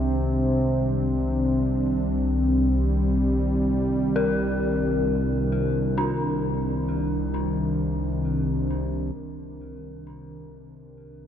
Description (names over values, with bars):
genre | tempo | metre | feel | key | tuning
dark ambient drone | free time | none | none | unclear | A4 = 439 Hz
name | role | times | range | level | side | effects
sweeping resonant pad | sustained chords | 0.0-11.3 s | C2 to D4 | -26 LUFS | right 1 dB | chorus
dark detuned synth bell | arpeggios | 0.0-11.3 s | D4 to Bb4 | -30 LUFS | left 4 dB | chorus, tape echo
analog drone | drone | 0.0-11.3 s | C2 to C3 | -26 LUFS | left 1 dB | chorus
quartz singing bowl | texture | 9.2-11.3 s | Bb4 | -49 LUFS | left 4 dB | none
room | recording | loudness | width
wet cathedral reverb, RT60 5.7 s | none | -22 LUFS | side -9 dB against mid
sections
0.0-9.2 A section; 9.2-11.3 B section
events
filter sweep on synth drone 0.0-9.2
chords
0.0 Ab/C; 9.2 Cmadd9